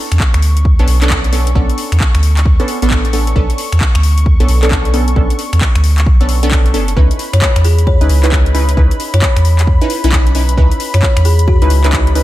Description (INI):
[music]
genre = UK garage, two-step garage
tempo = 133 BPM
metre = 4/4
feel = swing 63% on 16ths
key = B minor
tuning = A4 = 440 Hz
[part]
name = warm analog pad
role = sustained chords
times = 0.0-12.2 s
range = B5 to C#6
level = -26 LUFS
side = left 2 dB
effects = chorus, sidechain pumping
[part]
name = punchy chord stab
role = stabs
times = 0.0-12.2 s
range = B3 to B4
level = -19 LUFS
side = right 1 dB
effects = chorus, tape echo
[part]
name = soft dub sub bass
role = bass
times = 0.1-12.2 s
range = F#1 to F#2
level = -11 LUFS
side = equal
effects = none
[part]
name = house drum kit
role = drums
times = 0.1-12.2 s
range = finger snaps, handclaps, hi-hat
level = -20 LUFS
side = left 1 dB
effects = overdrive
[part]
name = electronic kick drum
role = drums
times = 0.2-12.0 s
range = none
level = -13 LUFS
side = equal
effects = overdrive
[part]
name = buzzing kalimba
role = melody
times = 7.3-11.6 s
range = F#4 to C#5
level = -22 LUFS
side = left 3 dB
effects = tape echo
[sound]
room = digital ambience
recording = none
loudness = -9 LUFS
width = side -15 dB against mid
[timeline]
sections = 0.0-12.2 A section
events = none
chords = 0.0 Bm9; 7.0 C#m9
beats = 0.20 0.65 1.10 | 1.55 2.00 2.46 2.91 | 3.36 3.81 4.26 4.71 | 5.16 5.61 6.07 6.52 | 6.97 7.42 7.87 8.32 | 8.77 9.22 9.67 10.12 | 10.58 11.03 11.48 11.93